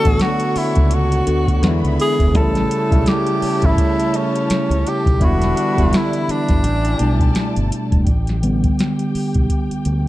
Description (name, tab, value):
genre	lush 1970s-style soul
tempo	84 BPM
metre	4/4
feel	swing 58% on 16ths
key	unclear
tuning	A4 = 442 Hz
part	breathy tenor saxophone	melody	0.0-7.4 s	C#4 to A4	-21 LUFS	equal	none
part	dark studio string section	second line	0.0-10.1 s	G3 to C#6	-29 LUFS	equal	none
part	tine electric piano	accompaniment	0.0-10.1 s	B2 to F#4	-21 LUFS	equal	none
part	string machine, violins	sustained chords	0.0-8.1 s	E3 to C#5	-31 LUFS	equal	none
part	warm horn section	stabs	0.0-7.7 s	B2 to A4	-30 LUFS	equal	none
part	fingered electric bass	bass	0.1-10.1 s	E1 to E2	-19 LUFS	equal	none
part	soft vintage rhythm box	drums	0.1-10.0 s	hi-hat, kick drum, snare drum	-19 LUFS	equal	none
room	digital ambience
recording	dark, warm production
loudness	-15 LUFS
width	side -16 dB against mid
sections	0.0-8.1 A section; 8.1-10.1 B section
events	tine electric piano solo 8.1-10.1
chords	0.0 D6; 1.6 E7; 2.3 A7; 5.2 Em7; 6.6 A9sus4